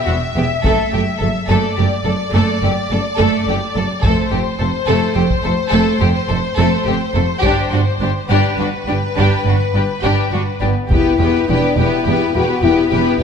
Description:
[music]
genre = cinematic, epic orchestral film score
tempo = 70 BPM (dotted quarters)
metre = 6/8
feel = straight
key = E minor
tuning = A4 = 440 Hz
[part]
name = warm symphonic violin section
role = melody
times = 0.0-13.2 s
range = B4 to E5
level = -22 LUFS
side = left 5 dB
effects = none
[part]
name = warm symphonic violin section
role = second line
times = 0.0-13.2 s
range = F#4 to A4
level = -21 LUFS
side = left 3 dB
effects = none
[part]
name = rich studio viola section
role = accompaniment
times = 0.0-13.2 s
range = A3 to D4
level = -22 LUFS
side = right 2 dB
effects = none
[part]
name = clear symphonic double bass section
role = bass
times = 0.1-13.2 s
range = E1 to G1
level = -21 LUFS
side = right 3 dB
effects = none
[part]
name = warm symphonic cello section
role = bass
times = 0.1-13.0 s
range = E2 to G2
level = -20 LUFS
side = right 2 dB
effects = none
[part]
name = solo taiko drums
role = drums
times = 0.6-12.0 s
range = none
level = -20 LUFS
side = equal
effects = none
[part]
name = mellow French horn section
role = sustained chords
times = 10.6-13.2 s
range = B3 to F#4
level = -17 LUFS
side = left 6 dB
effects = none
[sound]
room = moderate scoring stage reverb, RT60 1.6 s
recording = lossy compression artefacts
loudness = -14 LUFS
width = side -7 dB against mid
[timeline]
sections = 0.0-10.9 A section; 10.9-13.2 B section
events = build-up 0.0-10.9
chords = 0.0 E5; 0.6 D/F#; 4.0 F; 7.4 G; 10.9 Em

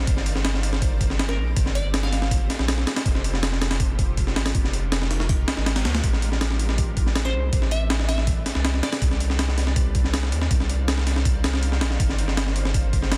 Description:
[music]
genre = drum and bass, jungle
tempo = 161 BPM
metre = 4/4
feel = straight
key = unclear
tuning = A4 = 443 Hz
[part]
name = saturated sub bass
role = bass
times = 0.0-13.2 s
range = F1 to Eb2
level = -26 LUFS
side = equal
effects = none
[part]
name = breakbeat sampler-style drum kit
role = drums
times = 0.1-13.2 s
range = hi-hat, kick drum, snare drum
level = -25 LUFS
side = equal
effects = none
[part]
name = glassy wavetable pluck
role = melody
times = 1.3-2.4, 7.3-9.1 s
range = Bb4 to F5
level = -35 LUFS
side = equal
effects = chorus, dub echo
[sound]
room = digital ambience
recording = dense, heavily limited modern master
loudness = -23 LUFS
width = mono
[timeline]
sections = 0.0-13.2 A section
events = none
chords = 0.1 Gm11; 3.1 Fm11; 6.0 Am11; 9.0 Cm11; 12.0 Gm11

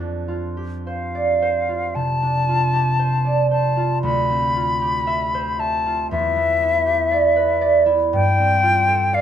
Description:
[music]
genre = classical, impressionist duo for flute and harp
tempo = 50-60 BPM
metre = 4/4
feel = rubato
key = unclear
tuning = A4 = 440 Hz
[part]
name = concert harp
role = accompaniment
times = 0.0-9.2 s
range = D2 to E5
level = -20 LUFS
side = right 2 dB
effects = none
[part]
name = silver concert flute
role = melody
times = 0.9-9.2 s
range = E5 to B5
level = -19 LUFS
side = left 3 dB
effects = none
[sound]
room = moderate studio reverb, RT60 0.8 s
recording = dark, warm production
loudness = -17 LUFS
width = side -9 dB against mid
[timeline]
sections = 0.0-9.2 A section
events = none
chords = 0.0 F69; 4.0 Dm11; 6.1 Em7; 8.1 G9sus4

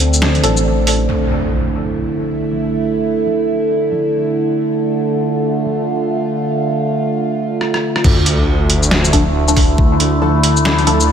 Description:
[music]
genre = deep dubstep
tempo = 138 BPM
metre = 4/4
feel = swing 60% on 16ths, half-time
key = D minor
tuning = A4 = 439 Hz
[part]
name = overtone-sweeping drone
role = sustained chords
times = 0.0-11.1 s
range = D3 to F4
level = -16 LUFS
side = right 2 dB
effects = chorus, built-in reverb
[part]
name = dark detuned saw bass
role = bass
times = 0.0-1.1, 8.0-11.1 s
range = A1 to D2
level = -15 LUFS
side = equal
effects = none
[part]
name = trip hop sampler-style drum kit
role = drums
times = 0.0-1.0, 7.6-11.1 s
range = crash cymbal, hi-hat, rim click, shaker, snare drum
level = -18 LUFS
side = equal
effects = overdrive, low-pass filter on hats, low-pass filter on perc, low-pass filter on snare, low-pass filter on cymbals, low-pass filter on room
[part]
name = filtered dub chord stab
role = stabs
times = 0.4-5.8, 9.1-11.0 s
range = F3 to A4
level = -22 LUFS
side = left 1 dB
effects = phaser, wide subtle chorus, dub echo
[part]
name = impact and sub drop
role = sound effects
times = 1.1-2.8, 8.0-9.8 s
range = none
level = -21 LUFS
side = equal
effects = none
[part]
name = electronic kick drum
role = drums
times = 8.0-9.9 s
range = none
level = -13 LUFS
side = equal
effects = none
[sound]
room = wet church reverb, RT60 3.3 s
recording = dreamy mix soaked in reverb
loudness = -13 LUFS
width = side -8 dB against mid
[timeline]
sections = 0.0-1.1 A section; 1.1-8.0 B section; 8.0-11.1 C section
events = kick drops out 0.7-1.1; impact 1.1-2.8, 8.0-9.8; drum fill 7.6-8.0; drop 8.0-11.1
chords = 0.0 D5; 1.1 Dm

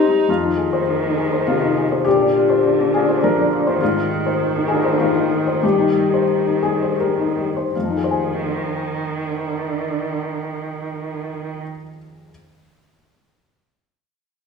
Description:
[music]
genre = neoclassical piano and strings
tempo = 77-103 BPM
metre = 3/4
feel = rubato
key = F dorian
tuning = A4 = 442 Hz
[part]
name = felt-muted upright piano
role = accompaniment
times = 0.0-12.3 s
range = F2 to Ab5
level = -17 LUFS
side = left 4 dB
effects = none
[part]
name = warm cello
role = second line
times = 0.3-11.6 s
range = D3 to Eb3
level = -24 LUFS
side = right 4 dB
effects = none
[sound]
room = moderate recital hall reverb, RT60 1.3 s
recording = recorded in a church or concert hall, studio reverb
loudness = -17 LUFS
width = side -5 dB against mid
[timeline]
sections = 0.3-7.7 A section; 7.7-12.3 B section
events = slowing down 2.9-7.7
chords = 0.3 Fm7; 2.1 Bbadd9; 3.8 Fm7/Ab; 5.6 Cm/G; 7.7 Fm7

